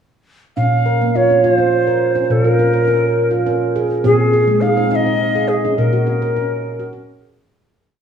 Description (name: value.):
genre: world meditative, meditative tuned percussion.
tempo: 69 BPM (dotted quarters).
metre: 6/8.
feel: straight.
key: Bb minor.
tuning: A4 = 445 Hz.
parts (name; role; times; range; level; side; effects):
Native American-style cedar flute; melody; 0.6-7.2 s; Ab4 to F5; -16 LUFS; equal; dub echo.
handpan; arpeggios; 0.6-7.5 s; Bb2 to Bb4; -16 LUFS; equal; none.
room: wet plate reverb, RT60 2.4 s.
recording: echo-heavy mix, studio reverb.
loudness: -13 LUFS.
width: side -8 dB against mid.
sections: 0.6-7.5 A section.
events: fade-out 5.8-7.5.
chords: 0.6 Bbm; 4.0 Ab/Bb; 5.8 Gb/Bb.